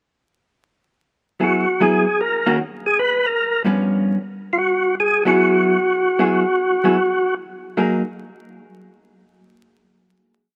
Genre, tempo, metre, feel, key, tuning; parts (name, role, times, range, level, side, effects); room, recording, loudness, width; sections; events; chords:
jazz; 151 BPM; 4/4; swing 67% on 8ths; F# mixolydian; A4 = 440 Hz
percussive tonewheel organ; melody; 1.4-7.3 s; F4 to B4; -20 LUFS; equal; overdrive, fast rotary speaker
vintage hollow-body jazz guitar; accompaniment; 1.4-8.0 s; G2 to G#4; -23 LUFS; equal
moderate plate reverb, RT60 3.5 s; vinyl crackle; -19 LUFS; mono
1.4-7.8 A section; 7.8-9.4 final chord
1.4 F#9sus4; 2.2 D#m7; 3.0 G7#11; 4.6 F#9sus4; 7.8 F#69